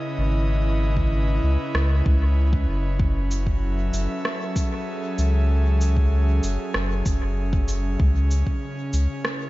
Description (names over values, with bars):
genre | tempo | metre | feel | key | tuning
ambient dub | 96 BPM | 4/4 | straight | F# dorian | A4 = 440 Hz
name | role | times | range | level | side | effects
airy breathy pad | sustained chords | 0.0-9.5 s | C#3 to E5 | -28 LUFS | equal | chorus
warm sub bass | bass | 0.2-9.1 s | F#1 to C#2 | -20 LUFS | equal | none
electronic kick drum | drums | 1.0-8.6 s | none | -24 LUFS | equal | none
electronic rim click and cabasa | drums | 1.7-9.4 s | none | -30 LUFS | right 1 dB | dub echo
room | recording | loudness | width
little or no reverb | vinyl crackle, nothing above 7.7 kHz | -20 LUFS | side -18 dB against mid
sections
0.0-9.5 A section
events
none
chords
0.0 C#m7; 3.0 F#m7; 8.0 C#m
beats
| 0.49 1.12 1.75 2.37 | 3.00 3.62 4.25 4.87 | 5.50 6.12 6.75 7.37 | 8.00 8.62 9.24